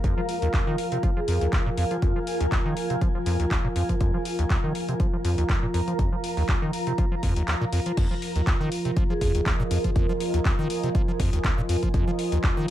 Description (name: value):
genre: acid house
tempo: 121 BPM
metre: 4/4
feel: swing 55% on 16ths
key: F minor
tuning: A4 = 439 Hz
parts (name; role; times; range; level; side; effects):
- dark analog pad; sustained chords; 0.0-12.7 s; F3 to F4; -32 LUFS; equal; chorus, sidechain pumping
- acid bass, square; riff; 0.0-12.7 s; Eb2 to F3; -27 LUFS; equal; tube saturation
- electronic kick drum; drums; 0.0-12.5 s; none; -24 LUFS; equal; none
- punchy analog drum machine; drums; 0.0-12.5 s; crash cymbal, handclaps, hi-hat; -32 LUFS; equal; none
- granular cloud pad; texture; 0.0-12.7 s; F4 to Bb5; -31 LUFS; right 1 dB; built-in reverb, sidechain pumping
- vibraphone with medium mallets; melody; 1.2-2.4, 9.1-9.3 s; F4 to Ab4; -34 LUFS; right 2 dB; ping-pong delay
room: light reverb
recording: none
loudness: -22 LUFS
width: side -12 dB against mid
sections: 0.0-8.0 A section; 8.0-12.7 B section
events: kick drops out 7.5-8.0; drop 8.0-12.7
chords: 0.0 Fm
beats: | 0.04 0.54 1.03 1.53 | 2.02 2.52 3.02 3.51 | 4.01 4.50 5.00 5.49 | 5.99 6.49 6.98 7.48 | 7.97 8.47 8.96 9.46 | 9.96 10.45 10.95 11.44 | 11.94 12.44